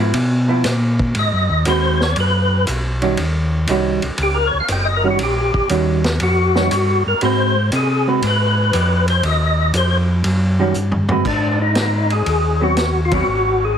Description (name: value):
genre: soul jazz organ trio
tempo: 119 BPM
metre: 4/4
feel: swing 69% on 8ths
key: unclear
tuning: A4 = 445 Hz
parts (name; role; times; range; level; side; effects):
- hollow-body jazz guitar; accompaniment; 0.0-13.3 s; Eb3 to B4; -20 LUFS; right 4 dB; none
- mellow tonewheel organ; bass; 0.0-13.8 s; F#1 to C3; -18 LUFS; equal; slow rotary speaker
- vintage drum kit; drums; 0.1-13.2 s; crash cymbal, hi-hat, kick drum, ride cymbal, snare drum, toms; -24 LUFS; equal; none
- percussive tonewheel organ; melody; 1.2-13.8 s; D4 to G5; -18 LUFS; left 2 dB; slow rotary speaker, chorus vibrato, plate reverb
room: light reverb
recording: heavily compressed radio sound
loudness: -14 LUFS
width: side -8 dB against mid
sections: 0.0-11.3 A section; 11.3-13.8 B section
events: tonewheel organ solo 0.0-11.3; drum fill 10.7-11.3; band accent 13.0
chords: 0.0 Db7#9 (rootless); 1.2 Ab7#9; 3.2 Eb7#9; 7.2 Ab7#9; 9.2 Eb(#9); 11.3 Ab7(no3)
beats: 0.15 0.65 | 1.16 1.66 2.17 2.67 | 3.18 3.68 4.19 4.69 | 5.20 5.70 6.21 6.71 | 7.22 7.72 8.23 8.73 | 9.23 9.74 10.24 10.75 | 11.25 11.76 12.26 12.77 | 13.27 13.78